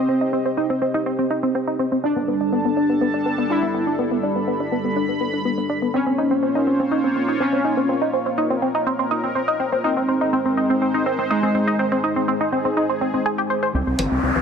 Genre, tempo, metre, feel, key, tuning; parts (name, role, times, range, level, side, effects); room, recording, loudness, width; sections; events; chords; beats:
melodic techno; 123 BPM; 4/4; straight; A4 = 443 Hz
resonant sweep polysynth; melody; 0.0-14.4 s; Ab3 to E4; -23 LUFS; equal; chorus, tape echo
sweeping resonant pad; sustained chords; 0.0-14.4 s; G3 to B5; -25 LUFS; equal; chorus
tight sequenced synth; arpeggios; 0.0-14.4 s; B3 to C5; -22 LUFS; equal; chorus, phaser, ping-pong delay
gritty driven synth bass; bass; 13.7-14.4 s; G1 to C2; -23 LUFS; equal
riser; sound effects; 13.9-14.4 s; -25 LUFS; equal
electronic hi-hat and congas; drums; 14.0-14.4 s; -26 LUFS; left 3 dB; overdrive, high-pass filter on hats, small room ambience, high-pass filter on perc
moderate huge ambient reverb, RT60 4.4 s; -18 LUFS; side -6 dB against mid
0.0-13.7 A section
filter sweep on synth arpeggio sound 0.0-13.7; riser 13.9-14.4
0.0 Cm; 2.0 Gsus2; 5.9 Bbmadd9; 9.8 Ab; 13.7 Cm
| 0.09 0.57 1.06 1.55 | 2.04 2.52 3.01 3.50 | 3.99 4.48 4.96 5.45 | 5.94 6.43 6.92 7.40 | 7.89 8.38 8.87 9.35 | 9.84 10.33 10.82 11.30 | 11.79 12.28 12.77 13.26 | 13.74 14.23